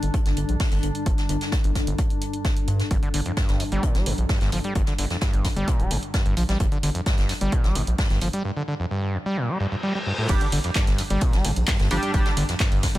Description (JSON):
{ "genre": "driving peak-time techno", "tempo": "130 BPM", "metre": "4/4", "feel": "straight", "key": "G minor", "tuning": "A4 = 439 Hz", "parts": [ { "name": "gritty driven synth bass", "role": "bass", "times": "0.0-13.0 s", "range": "D1 to G2", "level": "-25 LUFS", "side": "equal", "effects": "sidechain pumping" }, { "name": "metallic inharmonic drone", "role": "drone", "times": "0.0-13.0 s", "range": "G2 to D3", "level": "-33 LUFS", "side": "left 2 dB", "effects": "chorus, built-in reverb, sidechain pumping" }, { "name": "punchy analog drum machine", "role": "drums", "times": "0.0-13.0 s", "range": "crash cymbal, handclaps, hi-hat, ride cymbal", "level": "-32 LUFS", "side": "right 1 dB", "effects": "none" }, { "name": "electronic kick drum", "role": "drums", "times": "0.1-12.9 s", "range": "none", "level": "-23 LUFS", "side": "equal", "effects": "none" }, { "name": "jazz brush drum kit", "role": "drums", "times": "0.1-12.9 s", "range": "hi-hat, snare drum", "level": "-34 LUFS", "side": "left 1 dB", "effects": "high-pass filter on hats, high-pass filter on snare, high-pass filter on room" }, { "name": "overdriven acid bass", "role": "riff", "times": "2.9-13.0 s", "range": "F2 to G3", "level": "-27 LUFS", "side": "equal", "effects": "distortion, sidechain pumping, tape echo" }, { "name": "reverse cymbal", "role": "sound effects", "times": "9.5-10.3 s", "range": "none", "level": "-31 LUFS", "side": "left 1 dB", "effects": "none" }, { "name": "sync-sweep polysynth", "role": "stabs", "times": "10.3-12.3 s", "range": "G3 to G4", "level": "-29 LUFS", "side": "right 2 dB", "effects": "chorus, sidechain pumping, tape echo" } ], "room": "little or no reverb", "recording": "none", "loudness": "-21 LUFS", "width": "side -16 dB against mid", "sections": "0.0-10.3 A section; 10.3-13.0 B section", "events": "break 8.4-10.3; reverse cymbal 9.5-10.3; drop 10.3-13.0", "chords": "0.0 G5" }